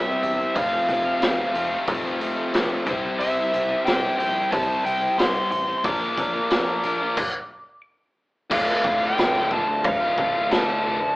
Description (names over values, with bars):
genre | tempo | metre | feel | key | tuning
classic rock | 90 BPM | 4/4 | straight | D minor | A4 = 436 Hz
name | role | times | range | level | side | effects
biting lead guitar | melody | 0.0-11.2 s | E5 to D6 | -24 LUFS | equal | overdrive
overdriven electric guitar | riff | 0.0-11.1 s | D2 to C5 | -27 LUFS | left 2 dB | none
overdriven electric guitar | riff | 0.0-11.2 s | D2 to C5 | -30 LUFS | right 2 dB | none
overdriven picked electric bass | bass | 0.0-11.1 s | D1 to D2 | -38 LUFS | equal | none
raw garage drum kit | drums | 0.2-10.7 s | crash cymbal, hi-hat, kick drum, snare drum | -25 LUFS | equal | none
room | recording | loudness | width
moderate stone room reverb, RT60 1.1 s | band playing live in one room, AM radio sound | -20 LUFS | side -20 dB against mid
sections
0.0-8.5 A section; 8.5-11.2 B section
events
stop 7.2-8.5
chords
0.0 C; 0.6 F; 2.9 C; 5.8 Bb; 8.5 Dm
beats
| 0.56 1.22 1.88 2.54 | 3.20 3.86 4.52 5.19 | 5.85 6.51 7.18 7.85 | 8.51 9.18 9.85 10.52